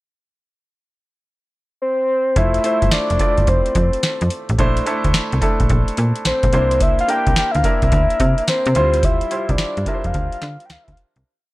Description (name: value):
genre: R&B, new jack swing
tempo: 108 BPM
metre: 4/4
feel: swing 66% on 16ths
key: F major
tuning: A4 = 440 Hz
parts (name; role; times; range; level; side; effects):
- soft octave-layered synth lead; melody; 1.8-11.0 s; C5 to G5; -19 LUFS; left 1 dB; chorus
- clear grand piano; accompaniment; 2.4-11.3 s; G3 to D5; -23 LUFS; right 1 dB; none
- slap-like FM bass; bass; 2.4-11.2 s; F1 to D3; -19 LUFS; equal; none
- booming analog drum machine; drums; 2.4-11.2 s; hi-hat, kick drum, snare drum; -20 LUFS; equal; vintage 12-bit sampler grit
room: little or no reverb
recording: none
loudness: -15 LUFS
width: side -19 dB against mid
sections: 0.1-2.4 pickup bar; 2.4-11.3 verse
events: fade-out 9.0-11.3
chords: 0.1 N.C.; 2.4 Fmaj7; 4.6 Bbmaj9#11; 6.5 C9; 8.8 Dm11